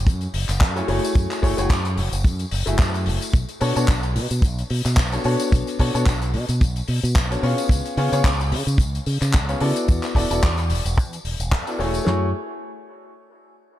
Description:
nu-disco, nu disco; 110 BPM; 4/4; swing 55% on 16ths; F# minor; A4 = 440 Hz
fingered electric bass with an envelope filter; bass; 0.0-12.3 s; E1 to C#3; -23 LUFS; equal; tube saturation, sidechain pumping
damped 70s drum kit; drums; 0.1-12.2 s; kick drum, snare drum; -17 LUFS; equal
damped 70s drum kit; drums; 0.1-12.0 s; handclaps, hi-hat, tambourine; -28 LUFS; left 2 dB
clear grand piano; accompaniment; 0.8-12.3 s; A3 to E5; -25 LUFS; left 2 dB; dub echo
light reverb, small room ambience; dark, warm production; -19 LUFS; side -13 dB against mid
0.0-12.1 A section; 12.1-13.8 B section
drop 0.0-12.1
0.0 F#m9; 3.3 Bm7; 7.7 C#7; 9.9 E9sus4; 12.1 F#m9

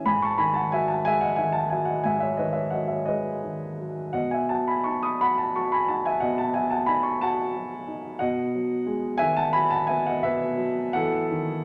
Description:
classical, lyrical solo piano; 55-62 BPM (dotted quarters); 6/8; rubato; A4 = 440 Hz
dark baby grand piano; solo; 0.0-11.6 s; G#2 to D#6; -25 LUFS; equal
wet recital hall reverb, RT60 1.4 s; -25 LUFS; mono
0.0-11.6 A section
0.1 Emaj9/G#; 4.2 Emaj9/B

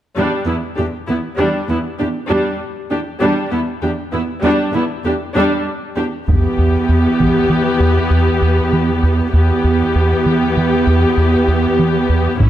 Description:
cinematic, hybrid orchestral and electronic film score; 98 BPM; 5/4; straight; E minor; A4 = 440 Hz
warm symphonic viola section; accompaniment; 0.2-12.5 s; G3 to G4; -17 LUFS; left 1 dB
rich studio cello section; bass; 0.2-12.5 s; E2 to A2; -20 LUFS; right 3 dB
rubbery square bass; riff; 6.3-12.5 s; E2 to E3; -15 LUFS; right 1 dB
taiko ensemble; drums; 6.3-7.5, 12.4-12.5 s; -21 LUFS; left 1 dB
moderate concert hall reverb, RT60 1.9 s; -13 LUFS; side -12 dB against mid
0.2-6.3 A section; 6.3-12.5 B section
build-up 6.3-12.5
0.2 Em7; 6.3 Em

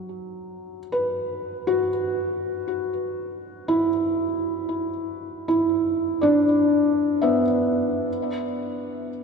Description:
ambient; free time; A4 = 440 Hz
felt-muted upright piano; solo; 0.0-9.2 s; F#3 to E5; -22 LUFS; equal; ping-pong delay
wet cathedral reverb, RT60 5.4 s; -21 LUFS; side -5 dB against mid
0.0-8.1 A section; 8.1-9.2 B section
0.0 Bm; 8.1 E5

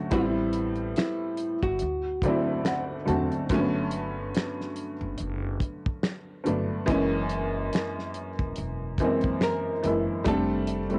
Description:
lo-fi hip hop; 71 BPM; 4/4; swing 55% on 16ths; A4 = 442 Hz
vintage hollow-body jazz guitar; melody; 0.0-3.0, 9.4-11.0 s; E4 to A#4; -33 LUFS; equal
dark upright piano; accompaniment; 0.0-11.0 s; D2 to A5; -30 LUFS; equal; cassette tape
upright bass; bass; 0.1-11.0 s; E1 to E2; -37 LUFS; equal
warm soul drum kit; drums; 0.1-11.0 s; finger snaps, hi-hat, kick drum, snare drum; -31 LUFS; equal; cassette tape
small room ambience; home recording on cassette; -28 LUFS; mono
0.0-11.0 A section
0.1 Am9; 1.8 D7; 3.5 Gmaj9#11; 6.9 F#9; 10.3 F69

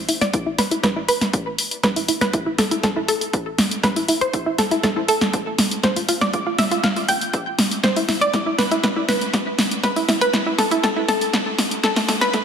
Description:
progressive house; 120 BPM; 4/4; straight; A minor; A4 = 440 Hz
analog pluck; arpeggios; 0.0-12.4 s; A3 to G5; -21 LUFS; equal; chorus, sidechain pumping, tape echo
house drum kit; drums; 0.1-12.4 s; hi-hat, snare drum; -20 LUFS; equal
electronic kick drum; drums; 0.3-12.4 s; -27 LUFS; equal; high-pass filter on kick
wet scoring stage reverb, RT60 1.8 s; dense, heavily limited modern master, high-pass filter; -18 LUFS; side -7 dB against mid
0.0-12.4 A section
build-up 0.0-12.4; drum fill 0.0-12.4

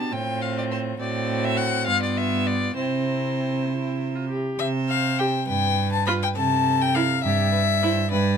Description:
quick classical-period movement for string quartet; 68 BPM (dotted quarters); 6/8; straight; C major; A4 = 444 Hz
warm violin; melody; 0.0-8.4 s; E4 to B5; -26 LUFS; left 7 dB
rich violin; second line; 0.0-8.4 s; G4 to A5; -29 LUFS; left 3 dB
warm viola; accompaniment; 0.0-8.0 s; B3 to G4; -28 LUFS; right 2 dB
warm cello; bass; 0.0-8.4 s; G2 to C3; -25 LUFS; right 4 dB
little or no reverb; close, detailed microphones; -21 LUFS; side -7 dB against mid
0.0-4.6 A section; 4.6-8.4 B section
0.1 F/A; 1.9 G7; 2.8 C; 4.6 C5; 5.5 G7; 6.4 C

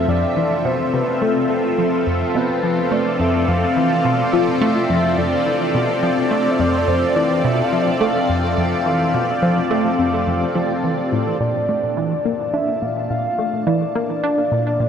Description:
ambient, sequencer-driven space music; 106 BPM; 4/4; straight; F lydian, Bb lydian from 11.4 s; A4 = 440 Hz
soft octave-layered synth lead; melody; 0.0-14.9 s; A4 to F5; -22 LUFS; equal; chorus, tape echo
lush unison pad; sustained chords; 0.0-14.9 s; Bb3 to A5; -21 LUFS; left 1 dB; chorus, phaser
tight sequenced synth; riff; 0.0-14.9 s; F2 to D4; -20 LUFS; equal; chorus, phaser, tape echo
bubbling stepped-filter texture; texture; 0.0-11.4 s; F3 to G4; -35 LUFS; right 3 dB
wet huge ambient reverb, RT60 8.1 s; dreamy mix soaked in reverb; -16 LUFS; side -8 dB against mid
0.0-11.4 A section; 11.4-14.9 B section
0.0 Fmaj7; 11.4 Bbmaj7

